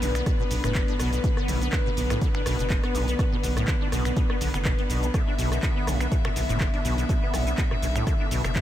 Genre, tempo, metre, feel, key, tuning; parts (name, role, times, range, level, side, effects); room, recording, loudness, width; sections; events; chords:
acid house; 123 BPM; 4/4; swing 54% on 16ths; B minor pentatonic; A4 = 440 Hz
bright chamber string section; sustained chords; 0.0-8.6 s; D3 to E5; -30 LUFS; left 2 dB; sidechain pumping
deep acid bass; riff; 0.0-8.6 s; A2 to D4; -30 LUFS; equal; ensemble chorus, analog delay
round analog bass; bass; 0.0-8.6 s; F#1 to B1; -28 LUFS; equal; sidechain pumping
punchy analog drum machine; drums; 0.0-8.6 s; cabasa, finger snaps, handclaps, hi-hat, rim click; -33 LUFS; equal
electronic kick drum; drums; 0.3-8.6 s; -26 LUFS; equal
moderate huge ambient reverb, RT60 8.0 s; dreamy mix soaked in reverb; -22 LUFS; side -12 dB against mid
0.0-8.6 A section
0.0 Bm